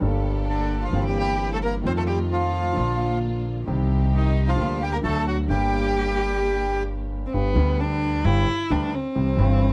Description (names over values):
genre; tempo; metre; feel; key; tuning
tango; 131 BPM; 4/4; rubato; G minor; A4 = 444 Hz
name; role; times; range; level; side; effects
clear concert grand piano; accompaniment; 0.0-9.7 s; G1 to A4; -29 LUFS; equal; none
muted studio string section; stabs; 0.0-7.3 s; A3 to A4; -37 LUFS; equal; none
upright bass; bass; 0.0-9.7 s; G1 to F2; -27 LUFS; equal; none
bandoneon; melody; 0.5-6.8 s; D3 to C5; -28 LUFS; equal; none
warm violin; second line; 0.5-9.7 s; B3 to C5; -31 LUFS; equal; none
room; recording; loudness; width
little or no reverb; close, detailed microphones; -23 LUFS; mono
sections
0.0-7.3 A section; 7.3-9.7 B section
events
violin solo 7.3-9.7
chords
0.0 Gmadd9; 0.9 C7/G; 1.8 F7; 2.8 Bb; 3.7 Cm; 4.6 Gm/D; 5.0 D; 5.5 Gm; 7.3 G; 9.2 C